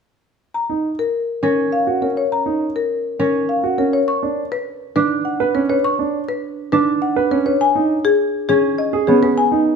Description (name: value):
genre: classical, minimalist pattern music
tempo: 102 BPM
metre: 3/4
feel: straight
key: F# major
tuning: A4 = 439 Hz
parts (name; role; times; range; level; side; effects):
- marimba with medium hard mallets; melody; 0.5-9.6 s; G#4 to C#6; -19 LUFS; left 5 dB; none
- warm grand piano; arpeggios; 0.7-9.7 s; C#4 to B4; -20 LUFS; right 5 dB; none
- concert harp; accompaniment; 1.4-9.8 s; B3 to D4; -21 LUFS; right 4 dB; none
room: moderate large studio reverb, RT60 1.1 s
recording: none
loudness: -16 LUFS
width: side -6 dB against mid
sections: 0.5-9.8 A section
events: none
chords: 0.5 F# (rootless); 4.1 Bm; 7.6 G#m